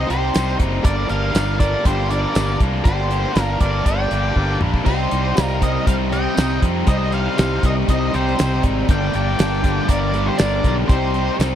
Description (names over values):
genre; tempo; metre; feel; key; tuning
classic rock; 119 BPM; 4/4; straight; C minor; A4 = 438 Hz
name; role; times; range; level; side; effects
octave-fuzz lead guitar; melody; 0.0-11.4 s; C5 to G5; -25 LUFS; left 2 dB; distortion, tape echo
octave-fuzz lead guitar; second line; 0.0-11.4 s; G4 to Eb5; -28 LUFS; right 2 dB; distortion
overdriven electric guitar; riff; 0.0-11.6 s; G2 to Eb4; -24 LUFS; left 1 dB; none
fuzz fingered electric bass; bass; 0.0-11.6 s; F#1 to F2; -22 LUFS; equal; overdrive
damped 70s drum kit; drums; 0.1-11.5 s; crash cymbal, hi-hat, kick drum, snare drum, tambourine, toms; -17 LUFS; equal; none
fuzz guitar; riff; 4.8-11.6 s; G2 to C4; -24 LUFS; equal; distortion
room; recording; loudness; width
little or no reverb; dry, close 1970s-style studio recording; -16 LUFS; side -10 dB against mid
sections
0.0-11.6 A section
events
drum fill 4.4-4.9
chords
0.0 Cm; 0.8 Gm; 4.9 Cm; 8.9 Gm; 10.9 Cm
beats
0.35 | 0.85 1.35 1.85 2.35 | 2.86 3.36 3.86 4.36 | 4.87 5.37 5.87 6.37 | 6.88 7.38 7.88 8.38 | 8.89 9.39 9.89 10.39 | 10.90 11.40